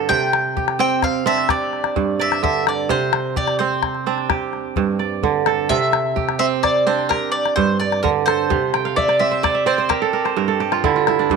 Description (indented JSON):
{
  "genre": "west african traditional, West African string and xylophone music",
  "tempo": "86 BPM (dotted quarters)",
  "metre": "12/8",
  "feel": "straight",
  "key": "G dorian",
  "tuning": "A4 = 440 Hz",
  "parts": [
    { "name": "kora", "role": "arpeggios", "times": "0.0-11.4 s", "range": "G2 to G5", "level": "-19 LUFS", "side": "right 9 dB", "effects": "none" },
    { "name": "mandolin", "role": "melody", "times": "0.1-11.0 s", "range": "G4 to G5", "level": "-20 LUFS", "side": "left 1 dB", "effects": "none" },
    { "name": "calabash", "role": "percussion", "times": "0.1-11.4 s", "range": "none", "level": "-22 LUFS", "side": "left 10 dB", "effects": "none" }
  ],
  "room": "moderate echo chamber reverb, RT60 2.2 s",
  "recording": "1960s-style stereo with parts hard left and right",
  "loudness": "-16 LUFS",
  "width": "side -5 dB against mid",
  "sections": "0.0-11.3 A section",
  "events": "kora fill 8.7-11.3",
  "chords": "0.1 C5; 1.5 G5; 2.9 C5; 4.3 G5; 5.7 C; 7.1 G5; 8.5 C69; 9.9 G5"
}